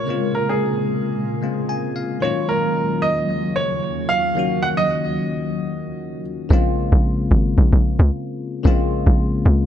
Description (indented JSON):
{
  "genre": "amapiano",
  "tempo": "112 BPM",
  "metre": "4/4",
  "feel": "swing 55% on 16ths",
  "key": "Bb minor",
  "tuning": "A4 = 440 Hz",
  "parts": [
    { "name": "clear baby grand piano", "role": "melody", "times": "0.0-6.2 s", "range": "Ab4 to Gb5", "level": "-22 LUFS", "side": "right 2 dB", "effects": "digital delay" },
    { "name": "bell-like tine electric piano", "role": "accompaniment", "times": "0.0-9.7 s", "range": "Db3 to Ab5", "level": "-23 LUFS", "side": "left 4 dB", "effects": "phaser" },
    { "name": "granular cloud pad", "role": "sustained chords", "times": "0.0-6.5 s", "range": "Eb2 to Bb4", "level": "-27 LUFS", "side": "right 1 dB", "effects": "built-in reverb" },
    { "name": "tight log drum bass", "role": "bass", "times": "6.5-9.7 s", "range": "Ab1 to Db2", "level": "-15 LUFS", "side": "equal", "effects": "none" }
  ],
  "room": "light reverb, digital ambience",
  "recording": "dark, warm production",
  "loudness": "-17 LUFS",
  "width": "side -10 dB against mid",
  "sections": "0.0-6.5 A section; 6.5-9.7 B section",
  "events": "tine electric piano fill 1.4-2.2; drop 6.5-9.7",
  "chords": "0.0 Bbm7; 2.2 Ebm7; 6.5 Bbm7",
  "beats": "| 0.08 0.61 1.15 1.69 | 2.22 2.76 3.29 3.83 | 4.37 4.90 5.44 5.97 | 6.51 7.04 7.58 8.12 | 8.65 9.19"
}